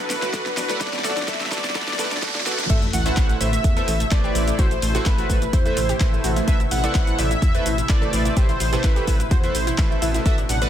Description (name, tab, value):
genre	progressive house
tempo	127 BPM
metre	4/4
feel	straight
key	A dorian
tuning	A4 = 440 Hz
part	wide unison lead	melody	0.0-10.7 s	B4 to F#5	-27 LUFS	equal	analog chorus, sidechain pumping, ping-pong delay
part	shimmering ambient pad	sustained chords	0.0-10.7 s	A2 to F#4	-31 LUFS	left 1 dB	chorus, built-in reverb, sidechain pumping
part	wide unison pluck	arpeggios	0.0-10.7 s	A3 to D5	-30 LUFS	equal	sidechain pumping, ping-pong delay
part	riser and sub drop	sound effects	0.0-4.6 s	none	-30 LUFS	equal	none
part	deep house drum kit	drums	0.1-10.7 s	crash cymbal, handclaps, hi-hat, shaker, snare drum	-28 LUFS	equal	sidechain pumping on hats, sidechain pumping on perc, sidechain pumping on cymbals
part	congas and woodblock	percussion	0.1-2.6 s	none	-43 LUFS	right 2 dB	none
part	chorused polysynth	stabs	0.2-10.7 s	A3 to F#5	-28 LUFS	right 3 dB	sidechain pumping
part	electronic kick drum	drums	0.3-10.4 s	none	-19 LUFS	equal	none
part	dark detuned saw bass	bass	2.7-10.7 s	A1 to E2	-25 LUFS	equal	sidechain pumping
part	dusty soul sampler-style drum kit	drums	2.7-10.6 s	hi-hat, snare drum	-39 LUFS	equal	none
room	digital ambience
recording	dense, heavily limited modern master, high-pass filter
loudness	-18 LUFS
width	side -10 dB against mid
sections	0.0-2.7 A section; 2.7-10.7 B section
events	build-up 0.0-2.7; drum fill 0.0-2.7; riser 0.0-2.7; drop 2.7-10.7; impact 2.7-4.6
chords	0.0 D6/A; 2.7 Amadd9